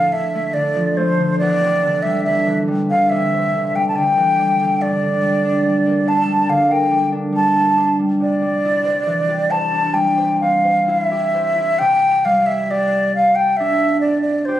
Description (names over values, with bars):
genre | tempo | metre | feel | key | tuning
celtic folk, Celtic slow air | 70 BPM | 4/4 | rubato | unclear | A4 = 440 Hz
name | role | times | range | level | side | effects
wooden flute | melody | 0.0-14.6 s | C5 to A5 | -16 LUFS | equal | none
concert harp | accompaniment | 0.0-14.6 s | D2 to C5 | -20 LUFS | equal | none
room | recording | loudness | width
moderate recital hall reverb, RT60 1.7 s | recorded on a phone in the room, studio ambience, compression | -15 LUFS | side -12 dB against mid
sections
0.0-11.8 A section; 11.8-14.6 B section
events
none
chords
0.0 Dm; 1.4 Cadd9/E; 4.8 Gm; 8.2 Cadd9; 11.8 Csus2